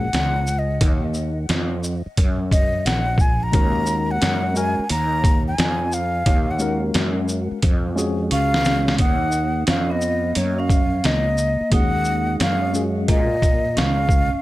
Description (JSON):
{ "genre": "hip hop, jazz-hop", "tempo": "88 BPM", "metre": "4/4", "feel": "swing 66% on 16ths", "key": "Eb minor", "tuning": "A4 = 441 Hz", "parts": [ { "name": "breathy mellow concert flute", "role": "melody", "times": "0.0-14.4 s", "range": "Db5 to Bb5", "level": "-24 LUFS", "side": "left 1 dB", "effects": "analog delay" }, { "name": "barky tine electric piano", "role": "accompaniment", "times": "0.0-13.3 s", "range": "Ab3 to Bb4", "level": "-25 LUFS", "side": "left 2 dB", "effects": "medium stereo tremolo" }, { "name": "fretless electric bass", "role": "bass", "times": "0.0-14.4 s", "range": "Bb1 to Bb2", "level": "-23 LUFS", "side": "equal", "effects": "ensemble chorus" }, { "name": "trip hop sampler-style drum kit", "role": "drums", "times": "0.1-14.3 s", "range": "hi-hat, kick drum, shaker, snare drum", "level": "-20 LUFS", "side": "equal", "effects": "none" }, { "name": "vibraphone with medium mallets", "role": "second line", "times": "8.3-14.4 s", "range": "Bb3 to Eb4", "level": "-27 LUFS", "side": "right 4 dB", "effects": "none" } ], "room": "light reverb", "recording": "none", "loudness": "-18 LUFS", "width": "side -17 dB against mid", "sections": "0.0-9.0 A section; 9.0-14.4 B section", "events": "flute solo 0.0-9.0; drum fill 7.6-9.0", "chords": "0.0 Ebm9" }